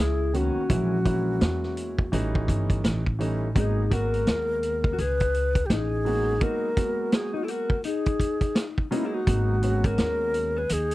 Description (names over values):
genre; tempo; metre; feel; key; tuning
hip hop, jazz-hop; 84 BPM; 4/4; swing 60% on 16ths; G# minor; A4 = 440 Hz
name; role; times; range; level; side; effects
alto flute; melody; 0.0-10.9 s; E4 to B4; -28 LUFS; left 1 dB; none
mellow electric guitar; second line; 0.0-10.9 s; C#4 to G#4; -35 LUFS; left 8 dB; wide subtle chorus
upright bass; bass; 0.0-10.9 s; G1 to E2; -26 LUFS; equal; none
dark grand piano; accompaniment; 0.3-10.6 s; D#3 to F#4; -31 LUFS; right 2 dB; none
vintage drum kit; drums; 0.3-10.9 s; hi-hat, kick drum, snare drum; -25 LUFS; equal; none
room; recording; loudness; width
little or no reverb; dry, close 1970s-style studio recording; -23 LUFS; side -17 dB against mid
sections
0.0-9.3 A section; 9.3-10.9 B section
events
none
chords
0.0 Bmaj7; 0.7 A#m7b5; 2.1 A7#11; 3.6 G#m7